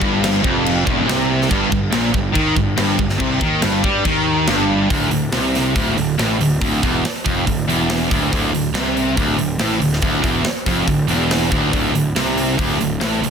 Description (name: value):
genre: heavy metal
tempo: 141 BPM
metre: 4/4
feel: straight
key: unclear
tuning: A4 = 440 Hz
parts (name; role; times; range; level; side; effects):
- distorted electric guitar; riff; 0.0-13.3 s; D2 to G3; -21 LUFS; left 12 dB; overdrive
- distorted electric guitar; riff; 0.0-4.9 s; E2 to G3; -23 LUFS; equal; distortion
- heavy high-gain guitar; riff; 0.0-13.3 s; D2 to G3; -20 LUFS; right 10 dB; distortion
- fuzz picked electric bass; bass; 0.0-13.3 s; D1 to G2; -24 LUFS; left 1 dB; overdrive
- tight metal drum kit; drums; 0.0-13.3 s; crash cymbal, hi-hat, kick drum, snare drum; -22 LUFS; equal; none
room: light reverb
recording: dense, heavily limited modern master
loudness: -15 LUFS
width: side -7 dB against mid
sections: 0.0-4.9 A section; 4.9-13.3 B section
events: none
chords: 0.0 N.C.; 1.5 Eb6/G; 4.9 Dm